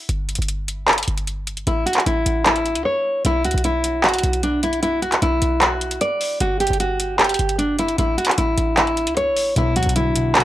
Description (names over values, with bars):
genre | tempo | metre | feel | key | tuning
hip hop, trap | 152 BPM | 4/4 | half-time | B minor | A4 = 441 Hz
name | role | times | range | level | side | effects
short 808-style bass | bass | 0.1-10.4 s | G1 to D2 | -24 LUFS | equal | none
trap drum kit | drums | 0.1-10.4 s | handclaps, hi-hat | -19 LUFS | equal | none
nylon-string guitar | melody | 1.7-10.4 s | D4 to D5 | -20 LUFS | equal | low-pass filter, tape echo
mellow electric guitar | accompaniment | 9.6-10.4 s | B2 to F#3 | -21 LUFS | left 1 dB | low-pass filter
room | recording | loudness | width
little or no reverb | dry, gritty hardware recording, transformer saturation | -17 LUFS | side -14 dB against mid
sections
0.0-10.4 A section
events
break 0.0-1.7, 2.9-3.2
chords
0.1 N.C.; 1.7 A; 3.2 B5; 6.4 Emadd9/G (rootless); 8.0 A; 9.6 Bm